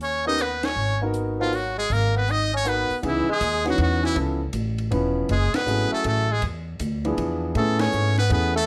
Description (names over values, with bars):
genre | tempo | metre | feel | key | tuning
jazz, small-group swing and bop | 159 BPM | 3/4 | swing 66% on 8ths | G# minor, C# minor from 3.0 s | A4 = 440 Hz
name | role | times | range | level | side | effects
trumpet with metal mute | melody | 0.0-8.6 s | E4 to D#5 | -28 LUFS | equal | none
clear tenor saxophone | second line | 0.0-8.7 s | E3 to D#4 | -30 LUFS | equal | none
upright bass | bass | 0.0-8.7 s | E1 to A2 | -28 LUFS | equal | none
compact cocktail drum kit | drums | 0.0-8.4 s | hi-hat, kick drum, ride cymbal, snare drum | -36 LUFS | equal | none
warm baby grand piano | accompaniment | 0.3-8.5 s | E3 to B4 | -28 LUFS | equal | none
room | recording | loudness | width
light reverb | none | -23 LUFS | mono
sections
0.0-3.0 A section; 3.0-8.7 B section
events
band accent 0.6, 5.5, 7.7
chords
0.0 D#7b13; 0.8 G#m9; 3.0 C#m9; 4.2 C#7alt; 5.3 F#m9; 6.4 E7b9; 7.5 Amaj9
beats
0.01 0.39 | 0.77 1.14 1.52 | 1.90 2.27 2.65 | 3.03 3.41 3.78 | 4.16 4.54 4.91 | 5.29 5.67 6.04 | 6.42 6.80 7.17 | 7.55 7.93 8.30